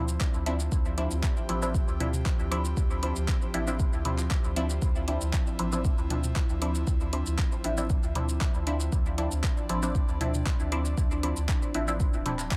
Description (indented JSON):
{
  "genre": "dub techno",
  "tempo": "117 BPM",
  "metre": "4/4",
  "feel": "straight",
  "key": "D minor",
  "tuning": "A4 = 440 Hz",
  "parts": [
    { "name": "airy breathy pad", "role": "sustained chords", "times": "0.0-12.6 s", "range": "F3 to G4", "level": "-40 LUFS", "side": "equal", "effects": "chorus, sidechain pumping" },
    { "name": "filtered dub chord stab", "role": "stabs", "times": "0.0-12.4 s", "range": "F3 to E4", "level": "-36 LUFS", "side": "equal", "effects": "chorus, phaser, sidechain pumping, dub echo" },
    { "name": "soft dub sub bass", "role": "bass", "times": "0.0-12.5 s", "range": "D1 to D2", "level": "-33 LUFS", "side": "equal", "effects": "sidechain pumping" },
    { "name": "deep house drum kit", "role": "drums", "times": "0.1-12.6 s", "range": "handclaps, hi-hat, shaker", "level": "-40 LUFS", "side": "equal", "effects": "dub echo" },
    { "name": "electronic kick drum", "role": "drums", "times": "0.2-12.6 s", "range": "none", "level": "-30 LUFS", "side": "equal", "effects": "none" },
    { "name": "electronic woodblock and toms", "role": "percussion", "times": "0.2-12.6 s", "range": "none", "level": "-41 LUFS", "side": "equal", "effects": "sidechain pumping on perc, sidechain pumping on toms, dub echo" }
  ],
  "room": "light reverb, digital ambience",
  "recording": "none",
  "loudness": "-28 LUFS",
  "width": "mono",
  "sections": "0.0-12.6 A section",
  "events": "none",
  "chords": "0.0 Dm9"
}